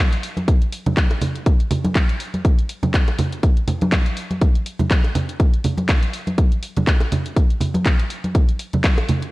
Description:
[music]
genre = house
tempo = 122 BPM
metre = 4/4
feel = swing 56% on 16ths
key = none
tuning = none
[part]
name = house drum kit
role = drums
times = 0.1-9.3 s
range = handclaps, hi-hat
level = -26 LUFS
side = left 1 dB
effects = none
[part]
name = congas and bongos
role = percussion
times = 0.4-9.2 s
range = none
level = -22 LUFS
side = right 1 dB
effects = sidechain pumping on perc
[part]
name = electronic kick drum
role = drums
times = 0.5-9.0 s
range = none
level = -16 LUFS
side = equal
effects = none
[sound]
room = light reverb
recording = cassette tape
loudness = -17 LUFS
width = side -20 dB against mid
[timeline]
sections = 0.0-9.3 A section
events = none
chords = none

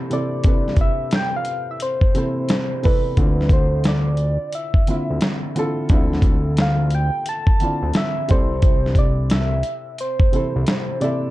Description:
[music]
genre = lo-fi hip hop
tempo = 88 BPM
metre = 4/4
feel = swing 66% on 16ths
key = unclear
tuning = A4 = 440 Hz
[part]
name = felt-muted upright piano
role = accompaniment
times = 0.0-11.3 s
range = C3 to E5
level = -25 LUFS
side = right 1 dB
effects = cassette tape, low-pass filter
[part]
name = soft struck synth lead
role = melody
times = 0.1-11.3 s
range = B4 to A5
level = -25 LUFS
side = equal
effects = chorus, low-pass filter, plate reverb
[part]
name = dusty soul sampler-style drum kit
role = drums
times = 0.1-11.2 s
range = hi-hat, kick drum, snare drum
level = -18 LUFS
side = equal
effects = none
[part]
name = fat analog bass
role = bass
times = 3.2-10.7 s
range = C2 to D2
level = -20 LUFS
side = equal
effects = none
[sound]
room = light reverb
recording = dark, warm production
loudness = -17 LUFS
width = side -16 dB against mid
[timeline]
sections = 0.0-11.3 A section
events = none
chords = 0.0 C6; 3.2 Dm7; 8.3 C6

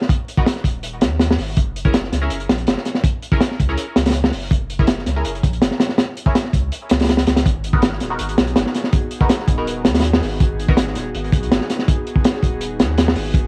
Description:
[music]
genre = drum and bass, jungle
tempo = 163 BPM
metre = 4/4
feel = straight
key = G# minor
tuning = A4 = 440 Hz
[part]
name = crunchy breakbeat drum kit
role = drums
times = 0.0-13.4 s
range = hi-hat, kick drum, snare drum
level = -19 LUFS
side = equal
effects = none
[part]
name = band-passed chord stab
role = stabs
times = 0.4-10.8 s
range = B3 to A#4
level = -30 LUFS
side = equal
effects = phaser, ensemble chorus, dub echo
[part]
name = soft dub sub bass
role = bass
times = 0.6-13.5 s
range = D#1 to D#2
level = -26 LUFS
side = equal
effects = none
[part]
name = airy breathy pad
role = sustained chords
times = 7.7-13.5 s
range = A#3 to G#4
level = -30 LUFS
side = equal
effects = chorus
[sound]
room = little or no reverb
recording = home recording on cassette, vinyl crackle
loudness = -18 LUFS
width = mono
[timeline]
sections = 0.0-13.5 A section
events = none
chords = 0.0 G#m7 (rootless); 1.6 F#9; 7.5 G#m7

